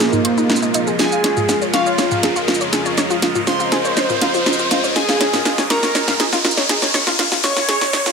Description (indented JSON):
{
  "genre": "melodic techno",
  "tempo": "121 BPM",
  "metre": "4/4",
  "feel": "straight",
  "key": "unclear",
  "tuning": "A4 = 440 Hz",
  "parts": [
    { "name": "wide unison lead", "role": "melody", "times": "0.0-8.1 s", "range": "Bb3 to Db5", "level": "-21 LUFS", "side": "right 1 dB", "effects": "dub echo" },
    { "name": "glassy wavetable pluck", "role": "second line", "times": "0.0-8.1 s", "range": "Bb4 to Db6", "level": "-26 LUFS", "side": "left 1 dB", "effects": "chorus, ping-pong delay" },
    { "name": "evolving wavetable pad", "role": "sustained chords", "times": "0.0-8.1 s", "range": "F2 to F4", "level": "-26 LUFS", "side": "equal", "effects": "phaser, built-in reverb" },
    { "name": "warbly dusty pluck", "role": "arpeggios", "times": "0.0-8.1 s", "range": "Eb4 to Db6", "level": "-23 LUFS", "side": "equal", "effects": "chorus, ping-pong delay" },
    { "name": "techno drum kit", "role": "drums", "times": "0.0-8.1 s", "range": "hi-hat, shaker, snare drum, toms", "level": "-19 LUFS", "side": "equal", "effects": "overdrive" },
    { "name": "riser", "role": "sound effects", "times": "0.0-8.1 s", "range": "none", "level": "-22 LUFS", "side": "equal", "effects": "none" },
    { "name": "airy breathy pad", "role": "texture", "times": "0.0-8.1 s", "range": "F4 to Eb5", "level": "-27 LUFS", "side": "right 2 dB", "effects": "chorus, phaser" }
  ],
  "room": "wet digital room reverb, RT60 1.1 s",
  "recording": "high-pass filter",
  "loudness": "-14 LUFS",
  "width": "side -5 dB against mid",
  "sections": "0.0-8.1 A section",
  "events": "build-up 0.0-8.1; drum fill 0.0-8.1; riser 0.0-8.1; filter sweep 0.0-8.1",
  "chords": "0.0 Fm7; 1.0 Db/F"
}